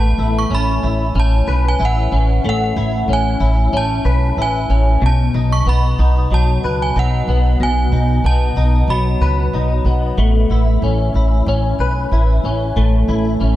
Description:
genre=dream pop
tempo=93 BPM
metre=4/4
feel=straight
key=unclear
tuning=A4 = 440 Hz
part: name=synth chime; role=melody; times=0.0-9.8 s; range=F#5 to C#6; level=-22 LUFS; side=right 2 dB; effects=ensemble chorus, tape echo
part: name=direct-recorded clean electric guitar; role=arpeggios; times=0.0-13.6 s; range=B2 to B4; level=-19 LUFS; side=left 2 dB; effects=ensemble chorus, tape echo
part: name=upright bass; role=bass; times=0.0-13.6 s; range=A1 to C#2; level=-15 LUFS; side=equal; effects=none
room=light reverb, studio reverb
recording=dark, warm production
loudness=-13 LUFS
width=side -14 dB against mid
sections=0.0-13.6 A section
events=none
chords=0.0 Aadd9; 5.0 B; 10.2 Aadd9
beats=0.51 1.15 1.80 | 2.44 3.09 3.73 4.38 | 5.02 5.67 6.31 6.96 | 7.60 8.25 8.89 9.54 | 10.18 10.83 11.47 12.12 | 12.77 13.41

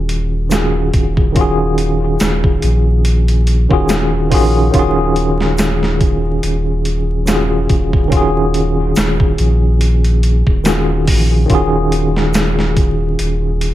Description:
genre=trip hop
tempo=71 BPM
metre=4/4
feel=swing 56% on 16ths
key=Eb minor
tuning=A4 = 438 Hz
part: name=tine electric piano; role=accompaniment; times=0.0-13.7 s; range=Eb3 to Ab4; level=-16 LUFS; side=equal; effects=overdrive, fast stereo tremolo, low-pass filter, tape echo
part: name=warm sub bass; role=bass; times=0.0-13.7 s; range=Eb1 to Bb1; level=-16 LUFS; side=equal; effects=none
part: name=dusty soul sampler-style drum kit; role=drums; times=0.1-13.7 s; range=hi-hat, kick drum, snare drum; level=-16 LUFS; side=equal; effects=none
part: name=tube shaker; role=percussion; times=0.5-12.5 s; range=none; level=-29 LUFS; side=right 3 dB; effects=none
room=little or no reverb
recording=vinyl crackle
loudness=-12 LUFS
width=side -14 dB against mid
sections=0.0-13.7 A section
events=none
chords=0.0 Ebm11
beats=0.52 | 1.36 2.21 3.05 3.90 | 4.74 5.59 6.43 7.28 | 8.12 8.97 9.81 10.66 | 11.50 12.35 13.19

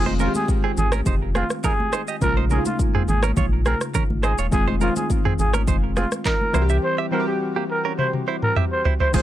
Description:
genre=afrobeats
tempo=104 BPM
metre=4/4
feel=straight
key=F minor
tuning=A4 = 440 Hz
part: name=growling trumpet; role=melody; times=0.0-9.2 s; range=F4 to C5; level=-26 LUFS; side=right 1 dB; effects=plate reverb, tape echo
part: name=warm analog keys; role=accompaniment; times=0.0-9.2 s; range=Db3 to G4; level=-26 LUFS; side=left 1 dB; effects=chorus
part: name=sub bass with octave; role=bass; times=0.0-9.2 s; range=Eb1 to C2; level=-22 LUFS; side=equal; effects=none
part: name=direct-recorded clean electric guitar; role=riff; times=0.1-9.2 s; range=Bb3 to E5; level=-28 LUFS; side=right 8 dB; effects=tape echo
part: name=congas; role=percussion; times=0.1-6.5 s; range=none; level=-31 LUFS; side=right 1 dB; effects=none
part: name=afro-pop drum kit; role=drums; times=0.2-9.2 s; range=crash cymbal, handclaps, kick drum, rim click, shaker, toms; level=-23 LUFS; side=equal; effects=none
room=light reverb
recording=none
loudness=-19 LUFS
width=side -13 dB against mid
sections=0.0-9.1 A section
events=drum fill 8.0-9.1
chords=0.0 Fm7; 2.2 Bbm7; 4.5 Fm7; 6.5 C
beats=0.48 1.06 1.64 | 2.21 2.79 3.37 3.95 | 4.52 5.10 5.68 6.25 | 6.83 7.41 7.98 8.56 | 9.14

